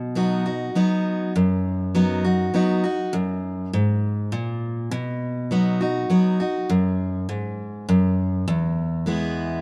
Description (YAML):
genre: country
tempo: 101 BPM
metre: 3/4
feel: straight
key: B major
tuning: A4 = 439 Hz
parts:
  - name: picked steel-string acoustic guitar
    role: solo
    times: 0.0-9.6 s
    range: E2 to F#4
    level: -23 LUFS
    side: equal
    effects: none
room: light reverb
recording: dark, warm production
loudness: -23 LUFS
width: mono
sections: 0.0-9.6 A section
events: none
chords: 0.0 B; 3.1 F#; 4.9 B; 8.5 E